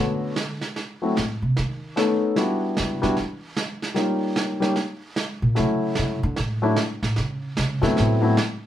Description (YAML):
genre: jazz piano trio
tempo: 150 BPM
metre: 4/4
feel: swing 65% on 8ths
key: D major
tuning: A4 = 438 Hz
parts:
  - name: warm grand piano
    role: melody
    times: 0.0-8.4 s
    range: D3 to A4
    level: -22 LUFS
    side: left 2 dB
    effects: none
  - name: upright bass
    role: bass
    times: 0.0-8.4 s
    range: A2 to E3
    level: -24 LUFS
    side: right 1 dB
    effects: none
  - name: snare drum and brushed snare drum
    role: drums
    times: 0.4-8.7 s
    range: none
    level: -28 LUFS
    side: right 3 dB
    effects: none
room: wet studio ambience, RT60 0.5 s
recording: heard from further back in the room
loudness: -21 LUFS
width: side -11 dB against mid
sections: 0.0-8.7 A section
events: upright bass solo 0.0-8.7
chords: 0.0 Bm9; 0.8 F#dim; 1.6 B7; 2.4 Em7; 4.0 Eb9; 5.6 Dmaj7 (rootless); 8.0 Am69